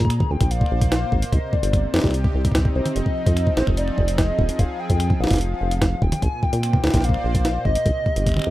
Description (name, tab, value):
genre	IDM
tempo	147 BPM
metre	4/4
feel	straight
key	F dorian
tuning	A4 = 445 Hz
part	warbly nostalgic lead	melody	0.0-8.5 s	C5 to Bb5	-27 LUFS	left 1 dB	analog chorus, ping-pong delay
part	warm analog pad	sustained chords	0.0-8.5 s	Bb2 to Eb5	-30 LUFS	equal	chorus, sidechain pumping
part	deep acid bass	bass	0.0-8.5 s	Eb1 to Bb2	-22 LUFS	equal	none
part	electronic kick drum	drums	0.0-8.3 s	none	-21 LUFS	equal	none
part	jungle sampler-style drum kit	drums	0.0-8.5 s	finger snaps, hi-hat, snare drum, toms	-25 LUFS	equal	none
room	little or no reverb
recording	rough home demo mix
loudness	-18 LUFS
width	side -16 dB against mid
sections	0.0-8.5 A section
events	none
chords	0.0 Bbadd9; 1.3 Cm; 3.0 Fm7; 6.2 Bbadd9; 7.9 Cm